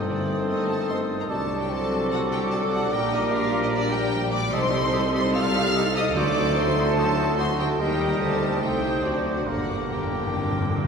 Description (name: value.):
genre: classical.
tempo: 148 BPM.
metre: 4/4.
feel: rubato.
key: G minor.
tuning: A4 = 440 Hz.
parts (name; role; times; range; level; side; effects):
warm studio violin section; melody; 0.0-10.9 s; C5 to F6; -31 LUFS; left 2 dB; none.
hollow concert flute; second line; 0.0-10.9 s; D6 to Eb6; -35 LUFS; left 1 dB; none.
warm clarinet; second line; 0.0-10.9 s; D4 to A4; -33 LUFS; left 3 dB; none.
warm oboe; second line; 0.0-10.9 s; A4 to C5; -35 LUFS; right 2 dB; none.
warm symphonic violin section; second line; 0.0-10.9 s; C4 to F5; -31 LUFS; left 1 dB; none.
mellow bassoon; accompaniment; 0.0-10.9 s; A3 to F#4; -31 LUFS; right 1 dB; none.
warm symphonic viola section; accompaniment; 0.0-10.9 s; D3 to Eb4; -33 LUFS; equal; none.
dark French horn section; sustained chords; 0.0-10.9 s; A3 to Eb4; -35 LUFS; left 4 dB; none.
warm trombone section; sustained chords; 0.0-10.9 s; A2 to A3; -34 LUFS; equal; none.
warm trumpet; stabs; 0.0-10.9 s; G4 to C5; -31 LUFS; equal; none.
clear tuba; bass; 0.0-10.9 s; G1 to Eb2; -32 LUFS; right 1 dB; none.
rich symphonic cello section; bass; 0.0-10.9 s; G2 to Eb3; -32 LUFS; right 3 dB; none.
rich symphonic double bass section; bass; 0.0-10.9 s; G1 to Eb2; -32 LUFS; right 2 dB; none.
timpani; percussion; 0.0-0.3, 6.2-6.7, 9.5-10.9 s; G2 to D3; -31 LUFS; left 1 dB; none.
room: wet concert hall reverb, RT60 2.3 s.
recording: minimal, uncompressed stereo recording.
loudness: -21 LUFS.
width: side -6 dB against mid.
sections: 0.0-10.9 A section.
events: timpani fill 9.5-10.9.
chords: 0.0 Adim/G; 1.3 D7/C; 2.9 Gm/Bb; 4.5 Am7b5/C; 6.2 D7b9; 7.8 Eb; 8.6 Am7b5/C; 9.0 D7; 9.5 Gm.